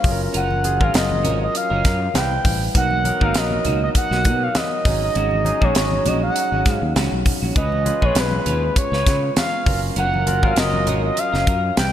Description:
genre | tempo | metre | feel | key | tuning
polished 1980s jazz-funk pop | 100 BPM | 4/4 | swing 54% on 16ths | unclear | A4 = 440 Hz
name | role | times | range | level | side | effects
expressive synth lead | melody | 0.0-11.9 s | Cb5 to G5 | -22 LUFS | right 1 dB | chorus, digital delay
barky tine electric piano | accompaniment | 0.0-11.9 s | Gb3 to B4 | -26 LUFS | left 2 dB | wide subtle chorus
fretless electric bass | bass | 0.0-11.9 s | Gb1 to Db3 | -23 LUFS | equal | none
crisp fusion drum kit | drums | 0.0-11.9 s | hi-hat, kick drum, snare drum | -21 LUFS | equal | none
congas | percussion | 0.0-11.9 s | none | -33 LUFS | left 2 dB | none
semi-hollow electric guitar | riff | 0.2-11.8 s | Ab3 to Db5 | -30 LUFS | right 6 dB | analog chorus
room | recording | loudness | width
moderate lush hall reverb, RT60 2.8 s | bright 1980s-style digital production | -17 LUFS | side -10 dB against mid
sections
0.0-11.9 A section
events
none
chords
0.0 Gbmaj7; 2.1 Cmaj7; 2.7 Ab7sus4; 7.6 Db7; 9.7 Gbmaj7

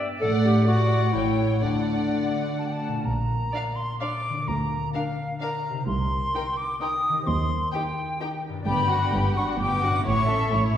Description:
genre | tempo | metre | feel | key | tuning
cinematic, playful, whimsical film cue | 129 BPM | 3/4 | straight | D major, Bb major from 3.1 s | A4 = 440 Hz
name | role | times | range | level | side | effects
warm clarinet | second line | 0.0-2.6 s | D4 to A4 | -27 LUFS | equal | none
concert harp | arpeggios | 0.0-10.8 s | G2 to D5 | -32 LUFS | left 3 dB | none
muted chamber violin section | melody | 0.2-10.8 s | C#5 to G5 | -34 LUFS | left 5 dB | none
muted studio violin section | second line | 0.2-10.7 s | E4 to D5 | -33 LUFS | left 1 dB | none
muted studio viola section | accompaniment | 0.2-10.8 s | A3 to Eb4 | -31 LUFS | right 1 dB | none
muted chamber cello section | bass | 0.2-10.8 s | C2 to D3 | -28 LUFS | equal | none
muted chamber double bass section | bass | 0.2-10.8 s | G1 to Eb2 | -30 LUFS | right 1 dB | none
silver concert flute | second line | 2.6-10.7 s | F5 to Eb6 | -27 LUFS | left 1 dB | none
room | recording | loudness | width
wet scoring stage reverb, RT60 1.5 s | heard from further back in the room | -22 LUFS | side -10 dB against mid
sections
0.0-3.1 A section; 3.1-10.8 B section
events
none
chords
0.2 D/A; 1.1 A7; 1.6 D; 3.1 Bb; 4.5 Bb/D; 5.9 Cm7; 7.3 Cm/Eb; 8.7 Gmaj7; 10.1 A

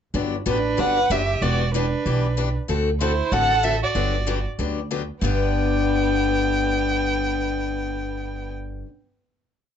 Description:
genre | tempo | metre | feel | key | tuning
acoustic string swing (jazz manouche) | 189 BPM | 4/4 | swing 60% on 8ths | G major | A4 = 440 Hz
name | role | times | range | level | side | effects
picked steel-string acoustic guitar | accompaniment | 0.1-8.9 s | G2 to A4 | -25 LUFS | left 7 dB | none
upright bass | bass | 0.1-8.8 s | E1 to D2 | -25 LUFS | right 1 dB | none
dark violin | melody | 0.5-8.5 s | B4 to G5 | -25 LUFS | right 1 dB | none
warm violin | second line | 0.5-8.5 s | B3 to B4 | -29 LUFS | right 6 dB | none
room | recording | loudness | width
moderate club reverb, RT60 0.5 s | nothing above 8.0 kHz | -20 LUFS | side -8 dB against mid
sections
0.1-5.2 A section; 5.2-7.8 final chord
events
none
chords
0.1 Gmaj7; 1.4 Em9; 2.7 D9; 4.0 Gmaj7; 5.2 G

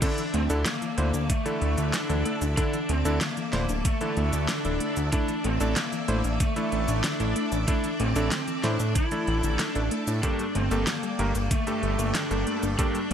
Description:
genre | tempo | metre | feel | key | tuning
synthwave | 94 BPM | 4/4 | straight | unclear | A4 = 440 Hz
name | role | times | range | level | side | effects
lead guitar through a small cranked amp | melody | 0.0-13.1 s | A3 to E4 | -30 LUFS | left 1 dB | overdrive, tape echo
string machine, full ensemble | sustained chords | 0.0-13.1 s | A4 to D6 | -36 LUFS | equal | ensemble chorus, sidechain pumping
thumb-piano-like synth pluck | arpeggios | 0.0-13.1 s | D3 to A4 | -35 LUFS | left 2 dB | chorus, tape echo
clear electric grand piano | stabs | 0.0-13.0 s | G2 to C5 | -32 LUFS | right 1 dB | none
electronic kick drum | drums | 0.0-12.9 s | none | -26 LUFS | equal | none
pop drum kit | drums | 0.0-13.1 s | cabasa, crash cymbal, handclaps, hi-hat, snare drum | -32 LUFS | equal | none
fat analog bass | bass | 0.3-13.1 s | D1 to A2 | -27 LUFS | equal | none
room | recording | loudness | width
light reverb, digital ambience | none | -24 LUFS | side -8 dB against mid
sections
0.0-13.1 A section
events
none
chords
0.0 Dsus2; 5.1 Asus4; 10.2 Gmadd9

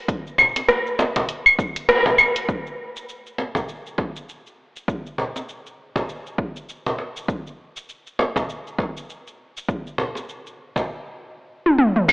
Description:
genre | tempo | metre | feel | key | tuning
downtempo | 100 BPM | 4/4 | swing 58% on 16ths | none | none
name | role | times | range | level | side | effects
deep house drum kit | drums | 0.1-12.1 s | claves, crash cymbal, hi-hat, rim click, shaker, toms | -16 LUFS | equal | overdrive, studio reverb
electronic kick drum | drums | 0.1-12.1 s | none | -26 LUFS | equal | overdrive, studio reverb
cajon | percussion | 0.4-10.9 s | none | -26 LUFS | equal | none
room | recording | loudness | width
wet echo chamber reverb, RT60 2.3 s | dry, gritty hardware recording, transformer saturation, cassette tape, AM radio sound | -19 LUFS | side -25 dB against mid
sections
0.0-2.5 A section; 2.5-12.1 B section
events
band accent 1.9-2.2; drum fill 11.6-12.1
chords
none

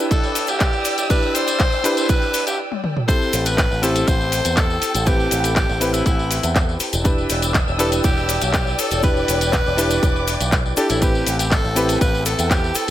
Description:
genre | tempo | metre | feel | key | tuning
nu-disco, nu disco | 121 BPM | 4/4 | straight | A minor | A4 = 440 Hz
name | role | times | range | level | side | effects
warm electric grand piano | accompaniment | 0.0-12.9 s | C4 to D5 | -24 LUFS | equal | sidechain pumping, low-pass filter
dark studio violin section | sustained chords | 0.0-12.9 s | A4 to E6 | -27 LUFS | left 1 dB | sidechain pumping
picked electric bass with an envelope filter | bass | 0.0-12.9 s | E1 to E2 | -24 LUFS | equal | high-pass filter
raspy tenor saxophone | melody | 0.1-12.9 s | E4 to C5 | -23 LUFS | equal | digital delay
electronic kick drum | drums | 0.1-12.6 s | none | -19 LUFS | equal | none
house drum kit | drums | 0.1-12.9 s | handclaps, hi-hat, tambourine, toms | -24 LUFS | left 1 dB | none
cabasa | percussion | 0.1-12.9 s | none | -30 LUFS | left 2 dB | none
room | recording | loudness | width
light reverb, digital ambience | none | -16 LUFS | side -12 dB against mid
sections
0.0-3.1 A section; 3.1-12.9 B section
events
build-up 0.0-3.1; break 2.6-3.1; drum fill 2.7-3.1; drop 3.1-12.9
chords
0.0 Em7; 3.1 Am7; 7.1 Em7; 11.0 Am7

